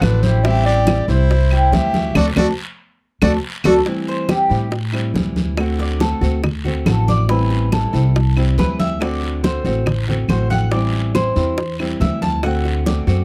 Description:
latin, Cuban son and guajira; 140 BPM; 4/4; straight; A4 = 441 Hz
mellow clarinet; melody; 0.0-3.8 s; B4 to E5; -24 LUFS; equal
brilliant trumpet; second line; 0.0-3.7 s; D4 to G4; -32 LUFS; equal
nylon-string guitar; accompaniment; 0.0-13.2 s; D3 to F#4; -26 LUFS; equal
Cuban tres; arpeggios; 0.0-13.2 s; C4 to A5; -24 LUFS; equal
upright bass; bass; 0.0-13.2 s; A1 to A2; -20 LUFS; equal
bongos; percussion; 0.0-13.2 s; -25 LUFS; equal
claves; percussion; 0.0-12.6 s; -31 LUFS; equal
congas; percussion; 0.0-13.2 s; -25 LUFS; equal
guiro; percussion; 0.0-13.2 s; -36 LUFS; equal
light reverb; dry, close 1970s-style studio recording; -18 LUFS; mono
0.0-3.9 A section; 3.9-13.2 B section
band accent 2.2-3.9; Cuban tres solo 3.9-13.2
0.4 Am7; 2.2 D7; 3.9 Am7; 5.6 D7; 7.3 Am7; 9.0 D7; 10.7 Am7; 12.4 D7

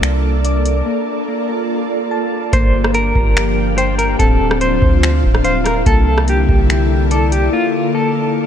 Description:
hip hop, atmospheric cloud-rap; 144 BPM; 4/4; half-time; A4 = 438 Hz
ethereal airy pad; sustained chords; 0.0-8.5 s; D3 to D5; -19 LUFS; left 1 dB; ensemble chorus, built-in reverb, sidechain pumping
soft electric-piano-like synth keys; arpeggios; 0.0-8.5 s; Bb3 to A5; -23 LUFS; left 3 dB; chorus, low-pass filter, ping-pong delay
long sustained 808-style bass; bass; 0.0-7.5 s; D1 to D2; -16 LUFS; equal
booming analog drum machine; drums; 0.0-7.4 s; finger snaps, hi-hat, kick drum, rim click; -16 LUFS; equal
wind-like tuned noise texture; texture; 0.0-8.5 s; Bb3 to F5; -30 LUFS; left 1 dB; built-in reverb
clean electric guitar; melody; 2.5-8.5 s; F4 to C5; -19 LUFS; equal; tremolo, low-pass filter, ping-pong delay
little or no reverb; -13 LUFS; side -9 dB against mid
0.0-2.5 A section; 2.5-8.5 B section
break 0.9-2.5, 7.5-8.5
0.0 C13; 0.9 Bbmaj7; 2.5 Gm7; 4.2 Dm9; 5.9 C13; 7.5 Bbmaj7

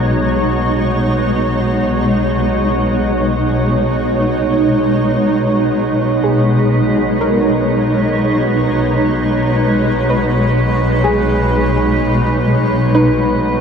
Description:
ambient; 63 BPM; 4/4; straight; B major; A4 = 437 Hz
shimmering ambient pad; sustained chords; 0.0-13.6 s; B2 to C#5; -14 LUFS; equal; chorus, built-in reverb
bright studio double bass section; bass; 0.0-13.6 s; B1; -20 LUFS; left 1 dB
organ-like drone; drone; 0.0-13.6 s; B3 to F#4; -26 LUFS; equal; ensemble chorus, built-in reverb
drifting glass-harmonics texture; texture; 5.7-13.6 s; B4; -22 LUFS; right 3 dB; chorus, built-in reverb
soft round pluck; arpeggios; 6.2-13.6 s; D#4 to B4; -21 LUFS; equal; analog chorus, ping-pong delay
wet huge ambient reverb, RT60 9.0 s; dark, warm production; -12 LUFS; side -6 dB against mid
0.0-13.6 A section
fade-out on synth drone 0.0-13.6
0.0 B69

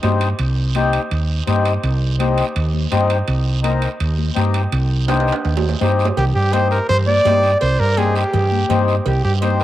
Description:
latin, cumbia; 166 BPM; 4/4; straight; C minor; A4 = 439 Hz
mellow accordion; accompaniment; 0.0-9.6 s; C4 to Bb4; -22 LUFS; left 4 dB; cassette tape
woody fretless electric bass; bass; 0.0-9.6 s; C2 to G2; -18 LUFS; right 1 dB; wide subtle chorus
congas; percussion; 0.0-9.6 s; -27 LUFS; left 11 dB
guiro; percussion; 0.0-9.6 s; -32 LUFS; right 9 dB
timbales and cowbell; percussion; 0.0-9.6 s; -28 LUFS; right 8 dB
warm trumpet; melody; 6.2-9.6 s; G4 to D5; -18 LUFS; right 1 dB; cassette tape
wet spring reverb, RT60 2.6 s; home recording on cassette; -15 LUFS; side -13 dB against mid
0.0-6.2 A section; 6.2-9.6 B section
drum fill 5.1-6.2
0.0 Cm

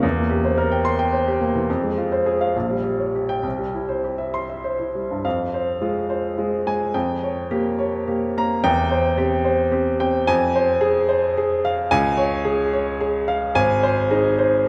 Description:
classical, virtuoso piano study; 72 BPM (dotted quarters); 6/8; rubato; F minor; A4 = 440 Hz
warm baby grand piano; solo; 0.0-14.7 s; Ab1 to C6; -21 LUFS; equal
wet church reverb, RT60 2.5 s; recorded in a church or concert hall; -21 LUFS; mono
0.0-5.2 A section; 5.2-14.7 B section
0.0 C7/E; 1.7 Fm; 2.5 Gdim/Bb; 3.4 C; 5.2 Fm; 6.9 Gm7b5/F; 8.6 C/E; 10.3 Fm; 11.9 Db; 13.6 Ab

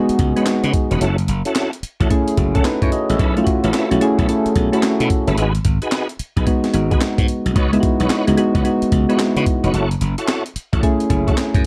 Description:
R&B, new jack swing; 110 BPM; 4/4; swing 63% on 16ths; F# dorian; A4 = 441 Hz
soft electric-piano-like synth keys; accompaniment; 0.0-11.7 s; G#3 to E5; -20 LUFS; equal; chorus
glassy slap bass; bass; 0.1-11.6 s; E1 to C#3; -22 LUFS; equal
breakbeat sampler-style drum kit; drums; 0.1-11.6 s; handclaps, hi-hat, kick drum, snare drum; -22 LUFS; equal
tonewheel organ; stabs; 0.4-11.4 s; C#4 to C#5; -26 LUFS; equal; chorus vibrato, fast rotary speaker
light reverb; dark, warm production; -18 LUFS; mono
0.0-11.7 A section
0.0 C#9sus4; 1.0 F#m7; 3.2 B9sus4; 5.4 G#m7; 7.6 C#9sus4; 9.7 F#m7

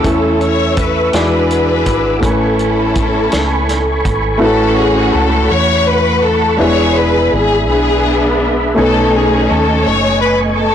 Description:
slow gospel; 55 BPM (dotted quarters); 6/8; straight; A major; A4 = 440 Hz
warm studio string section; melody; 0.0-10.7 s; B3 to C#5; -14 LUFS; left 2 dB
warm upright piano; accompaniment; 0.0-10.7 s; A2 to G#5; -17 LUFS; left 1 dB
dark French horn section; sustained chords; 0.0-4.4 s; E3 to A4; -28 LUFS; right 2 dB
mellow tonewheel organ; sustained chords; 0.0-10.7 s; A3 to E6; -19 LUFS; right 3 dB; slow rotary speaker, chorus vibrato
hollow-body short-scale fingered electric bass; bass; 0.0-10.7 s; E1 to E2; -18 LUFS; right 1 dB; transformer saturation
warm soul drum kit; drums; 0.0-4.2 s; hi-hat, kick drum, snare drum; -19 LUFS; right 1 dB
light reverb; blown-out, overdriven recording, overdrive; -10 LUFS; side -9 dB against mid
0.0-4.4 A section; 4.4-10.7 B section
0.0 A/E; 1.1 E9; 2.2 Amaj9; 4.4 A69; 6.6 E7; 8.8 B13

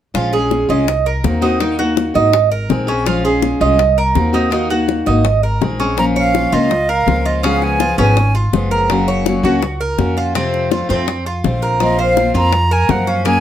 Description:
latin, Cuban son and guajira; 165 BPM; 4/4; straight; Bb minor; A4 = 442 Hz
picked steel-string acoustic guitar; accompaniment; 0.1-13.4 s; C3 to Ab4; -17 LUFS; left 2 dB
Cuban tres; arpeggios; 0.1-13.4 s; Bb3 to Eb5; -18 LUFS; right 4 dB
upright bass; bass; 0.1-13.4 s; Gb1 to Gb2; -19 LUFS; equal
bongos; percussion; 0.1-13.4 s; -21 LUFS; left 8 dB
breathy silver concert flute; melody; 6.0-8.3, 11.8-13.4 s; Eb5 to Bb5; -17 LUFS; right 2 dB; plate reverb
moderate studio reverb, RT60 0.5 s; -13 LUFS; side -10 dB against mid
0.1-6.0 A section; 6.0-13.4 B section
0.1 Bbm7; 0.9 Cm7b5; 1.6 Ebm; 2.3 Abadd9; 3.1 Bbm7; 3.8 Cm7b5; 4.5 Ebm; 5.2 Abadd9; 6.0 Bbm; 7.4 Db7; 8.9 Gb; 10.4 F; 11.8 Bbsus2

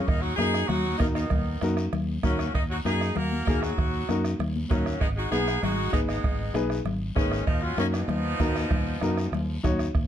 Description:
latin, cumbia; 195 BPM; 4/4; straight; Eb minor; A4 = 438 Hz
clear saxophone section; melody; 0.0-9.6 s; Ab3 to Bb4; -31 LUFS; left 1 dB
bright tenor saxophone; second line; 0.0-9.6 s; Eb3 to Eb4; -37 LUFS; right 4 dB
warm upright piano; accompaniment; 0.0-9.9 s; Eb4 to Db5; -31 LUFS; left 2 dB
fingered electric bass; bass; 0.1-10.1 s; Ab1 to Gb2; -29 LUFS; equal
bombo; percussion; 0.1-10.1 s; -28 LUFS; right 2 dB
guiro; percussion; 0.1-10.1 s; -45 LUFS; left 4 dB
congas; percussion; 0.4-9.8 s; -33 LUFS; left 3 dB
moderate studio reverb, RT60 0.7 s; dark, warm production; -24 LUFS; side -10 dB against mid
0.1-9.9 A section
0.1 Ebm; 5.0 Abm; 7.5 Ebmadd9

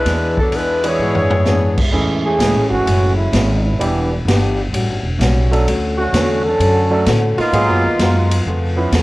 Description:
jazz, big band swing; 128 BPM; 4/4; swing 68% on 8ths; A major; A4 = 439 Hz
clear saxophone section; melody; 0.0-1.8 s; Gb3 to Db5; -18 LUFS; left 1 dB; cassette tape
fingerpicked steel-string acoustic guitar; accompaniment; 0.1-9.0 s; A2 to A#4; -22 LUFS; left 2 dB; cassette tape
upright bass; bass; 0.1-9.0 s; E1 to A2; -18 LUFS; equal
swinging big-band drum kit; drums; 0.1-9.0 s; crash cymbal, hi-hat, kick drum, ride cymbal, snare drum, toms; -21 LUFS; equal; cassette tape
clear concert grand piano; accompaniment; 0.8-8.9 s; E3 to B4; -21 LUFS; right 2 dB; cassette tape
warm trombone section; second line; 2.2-8.7 s; D3 to A4; -18 LUFS; right 1 dB; cassette tape
light reverb, studio ambience; home recording on cassette; -13 LUFS; side -19 dB against mid
0.0-1.9 A section; 1.9-9.0 B section
drum fill 1.0-1.5; trombone section solo 1.9-9.0
0.1 E7; 1.9 Amaj7; 3.8 Em7; 4.7 A13; 5.7 Dmaj7; 7.5 G#m9; 8.5 C#7alt

